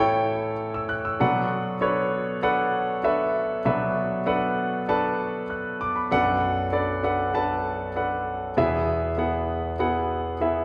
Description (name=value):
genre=pop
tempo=98 BPM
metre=4/4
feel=straight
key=B minor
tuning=A4 = 440 Hz
part: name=warm concert grand piano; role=solo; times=0.0-10.6 s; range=B1 to F#6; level=-25 LUFS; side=equal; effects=none
room=wet recital hall reverb, RT60 1.7 s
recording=recorded in a church or concert hall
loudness=-25 LUFS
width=mono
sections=0.0-6.1 A section; 6.1-8.6 B section; 8.6-10.6 C section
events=none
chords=0.0 A7; 1.2 Bm7; 8.6 E